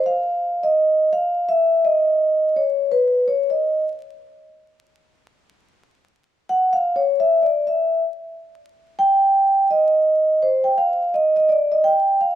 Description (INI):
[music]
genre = hip hop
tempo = 84 BPM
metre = 4/4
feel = swing 62% on 16ths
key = unclear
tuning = A4 = 441 Hz
[part]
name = vibraphone with soft mallets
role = solo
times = 0.0-12.4 s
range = Cb5 to G5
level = -16 LUFS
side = equal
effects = none
[sound]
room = moderate echo chamber reverb, RT60 1.9 s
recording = dark, warm production, vinyl crackle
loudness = -16 LUFS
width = side -11 dB against mid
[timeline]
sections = 0.0-12.4 A section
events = vibraphone solo 0.0-12.4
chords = none